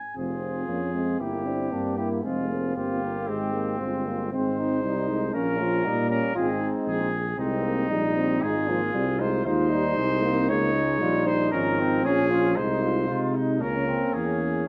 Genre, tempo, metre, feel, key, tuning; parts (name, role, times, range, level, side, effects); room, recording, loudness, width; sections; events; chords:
classical, brass quintet; 116 BPM; 4/4; rubato; Ab major from 8.4 s; A4 = 441 Hz
clear trumpet; melody; 0.0-14.7 s; C4 to Ab5; -32 LUFS; equal
warm flugelhorn; second line; 0.2-14.7 s; Bb3 to Ab4; -32 LUFS; equal
mellow French horn; accompaniment; 0.2-14.7 s; F3 to C4; -33 LUFS; equal
warm trombone; accompaniment; 0.2-14.4 s; Ab3 to F4; -33 LUFS; equal
warm tuba; bass; 0.2-14.7 s; F1 to C3; -32 LUFS; equal
wet large studio reverb, RT60 1.2 s; dark, warm production; -25 LUFS; mono
0.2-14.7 A section
0.2 Fm; 1.2 Edim/G; 2.2 Fm; 4.3 Ab; 5.3 Gdim/Bb; 6.4 Ab; 10.5 Db; 12.6 Ab/C; 13.6 Bbm7b5/Db